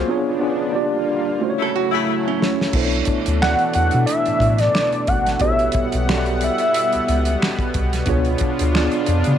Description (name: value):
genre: R&B, neo-soul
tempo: 90 BPM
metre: 4/4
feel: swing 56% on 16ths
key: B minor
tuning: A4 = 441 Hz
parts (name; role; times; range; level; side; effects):
- mellow tine electric piano; accompaniment; 0.0-9.4 s; A3 to E5; -22 LUFS; equal; medium stereo tremolo
- lush unison pad; sustained chords; 0.0-9.4 s; B2 to F#5; -25 LUFS; equal; chorus
- round analog bass; bass; 0.0-9.4 s; G#1 to C#3; -20 LUFS; equal; none
- archtop guitar, miked and amplified; second line; 1.6-2.7 s; C#4 to A4; -24 LUFS; right 14 dB; none
- bright saxophone section; stabs; 1.6-2.1 s; C#3 to E4; -24 LUFS; left 13 dB; none
- damped 70s drum kit; drums; 2.4-9.4 s; crash cymbal, finger snaps, hi-hat, kick drum, snare drum; -23 LUFS; equal; none
- fat analog lead; melody; 3.4-7.7 s; D5 to F#5; -19 LUFS; equal; chorus, slapback echo
room: light reverb, small room ambience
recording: 1960s-style stereo with parts hard left and right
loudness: -16 LUFS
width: side -9 dB against mid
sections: 0.0-2.7 A section; 2.7-9.4 B section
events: break 0.1-2.7; band accent 0.1-2.7; drum fill 1.4-2.7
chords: 0.1 C#7b9; 0.7 Gm7; 1.4 F#m7; 2.7 Bm11; 5.4 A13; 8.1 C#7b9